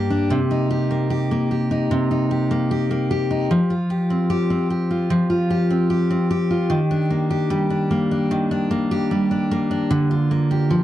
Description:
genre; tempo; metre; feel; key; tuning
pop; 75 BPM; 4/4; straight; unclear; A4 = 440 Hz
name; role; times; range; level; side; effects
picked steel-string acoustic guitar; solo; 0.0-10.8 s; G2 to G4; -18 LUFS; equal; none
room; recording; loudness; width
light reverb; dry, close 1970s-style studio recording; -18 LUFS; side -13 dB against mid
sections
0.0-6.7 A section; 6.7-10.8 B section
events
none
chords
0.3 Cm7; 3.5 Fsus2; 6.7 Ebmaj7; 9.9 Gm7/D

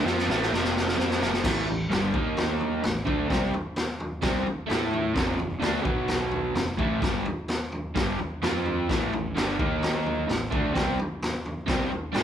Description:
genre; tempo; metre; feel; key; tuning
garage rock duo or trio; 129 BPM; 4/4; straight; A minor; A4 = 440 Hz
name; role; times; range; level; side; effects
crunchy overdriven guitar; riff; 0.0-12.2 s; F2 to A4; -27 LUFS; right 1 dB; none
fuzz picked electric bass; bass; 0.0-12.2 s; F1 to A2; -34 LUFS; equal; overdrive
raw garage drum kit; drums; 0.1-12.2 s; crash cymbal, kick drum, snare drum, toms; -28 LUFS; equal; none
room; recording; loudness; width
light reverb; band playing live in one room; -24 LUFS; side -9 dB against mid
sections
0.0-1.4 A section; 1.4-12.2 B section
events
drum fill 0.0-1.4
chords
0.0 F5; 1.4 A5; 2.1 D#5; 2.8 Am; 5.2 F5; 5.9 B5; 6.6 F5; 8.9 A5; 9.6 D#5; 10.3 Am

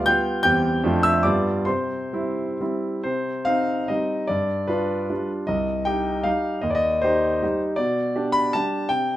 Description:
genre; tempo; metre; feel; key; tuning
classical, romantic triple-time dance for piano with dotted rhythms; 120-171 BPM; 3/4; rubato; C major, C minor from 3.0 s; A4 = 440 Hz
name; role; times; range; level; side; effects
clear concert grand piano; solo; 0.0-9.2 s; C2 to G6; -20 LUFS; equal; none
room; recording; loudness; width
moderate large studio reverb, RT60 0.9 s; none; -20 LUFS; side -14 dB against mid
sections
0.0-3.0 A section; 3.0-9.2 B section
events
none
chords
0.5 C/E; 0.8 Dm/F; 1.2 G7; 1.7 C; 3.0 Cm; 4.3 G7; 5.5 Cm; 6.6 Cm/Eb; 7.8 G/B

